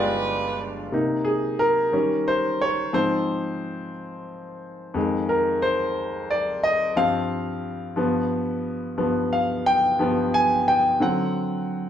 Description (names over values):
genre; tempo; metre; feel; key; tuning
gospel; 60 BPM (dotted quarters); 6/8; straight; unclear; A4 = 439 Hz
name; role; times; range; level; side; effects
clear saxophone section; melody; 0.0-0.9 s; D4 to B4; -27 LUFS; right 4 dB; none
clear grand piano; accompaniment; 0.0-11.9 s; G1 to Ab5; -21 LUFS; left 1 dB; none
room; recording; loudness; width
wet large studio reverb, RT60 0.8 s; band playing live in one room; -21 LUFS; side -9 dB against mid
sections
0.9-11.9 A section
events
grand piano solo 0.9-11.9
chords
0.0 G7b9; 0.9 Cm7; 1.9 Eb7; 2.9 Ab6; 5.0 Fm7; 7.0 G7sus4; 8.0 G7; 11.0 D7